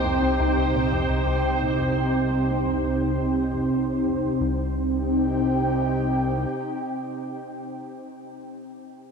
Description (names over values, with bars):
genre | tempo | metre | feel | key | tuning
ambient, sequencer-driven space music | 86 BPM | 4/4 | straight | C minor | A4 = 441 Hz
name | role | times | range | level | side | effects
sweeping resonant pad | sustained chords | 0.0-8.0 s | C3 to G5 | -24 LUFS | equal | wide subtle chorus
resonant blip pluck | riff | 0.0-4.7 s | C2 to G3 | -33 LUFS | left 1 dB | none
fat analog bass | bass | 0.0-6.5 s | C2 | -28 LUFS | equal | none
bubbling stepped-filter texture | texture | 0.0-4.4 s | C5 | -33 LUFS | right 4 dB | chorus, built-in reverb
room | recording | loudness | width
wet huge ambient reverb, RT60 7.7 s | none | -21 LUFS | side -5 dB against mid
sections
0.0-4.4 A section; 4.4-7.2 B section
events
none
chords
0.0 Cm